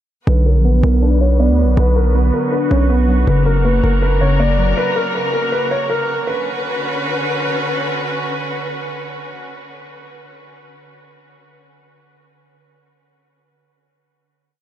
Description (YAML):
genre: hip hop, trap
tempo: 160 BPM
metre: 4/4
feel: half-time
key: B harmonic minor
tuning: A4 = 440 Hz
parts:
  - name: dark concert grand piano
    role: melody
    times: 0.3-7.4 s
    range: A#4 to D5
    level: -21 LUFS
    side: equal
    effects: low-pass filter, diffuse ambient delay
  - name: glassy wavetable pluck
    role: accompaniment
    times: 0.3-5.5 s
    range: C#3 to A#4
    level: -21 LUFS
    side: equal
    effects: chorus, low-pass filter
  - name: dark chamber string section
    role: sustained chords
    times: 0.3-9.4 s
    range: C#3 to B4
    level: -22 LUFS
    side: equal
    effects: low-pass filter
  - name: distorted 808-style bass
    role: bass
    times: 0.3-4.7 s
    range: F#1 to D2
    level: -14 LUFS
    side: equal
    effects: distortion
room: moderate huge ambient reverb, RT60 6.9 s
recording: dreamy mix soaked in reverb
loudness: -14 LUFS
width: side -11 dB against mid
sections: 0.3-6.3 breakdown; 6.3-9.3 final chord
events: filter sweep 0.3-6.3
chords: 0.3 Bmadd9; 3.3 F#; 6.3 Bmadd9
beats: | 0.27 0.65 1.02 1.40 | 1.77 2.15 2.52 2.90 | 3.27 3.65 4.02 4.40 | 4.77 5.15 5.52 5.90 | 6.27 6.65 7.02 7.40 | 7.77 8.15 8.52 8.90